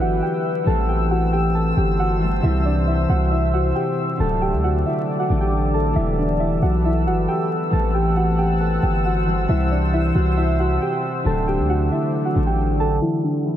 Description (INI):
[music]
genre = hip hop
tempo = 136 BPM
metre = 4/4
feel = half-time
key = E minor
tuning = A4 = 440 Hz
[part]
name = muted felt-like synth keys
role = melody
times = 0.0-13.6 s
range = D3 to A5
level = -23 LUFS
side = right 1 dB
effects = chorus, low-pass filter, diffuse ambient delay
[part]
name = concert harp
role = accompaniment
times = 0.0-13.6 s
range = C3 to D4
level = -23 LUFS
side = left 1 dB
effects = low-pass filter
[part]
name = deep dark ambient pad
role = sustained chords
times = 0.0-13.6 s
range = E2 to E6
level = -27 LUFS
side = left 2 dB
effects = chorus, built-in reverb
[part]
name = warm 808-style bass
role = bass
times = 0.0-13.0 s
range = D1 to D2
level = -21 LUFS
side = equal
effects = none
[sound]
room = moderate huge ambient reverb, RT60 7.7 s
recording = dreamy mix soaked in reverb, vinyl crackle, low-pass filter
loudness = -18 LUFS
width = side -11 dB against mid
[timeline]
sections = 0.0-13.0 A section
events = none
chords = 0.0 Emadd9; 0.7 Am7; 2.4 C; 4.2 D; 6.0 Emadd9; 7.7 Am7; 9.5 C; 11.3 D; 13.0 Esus2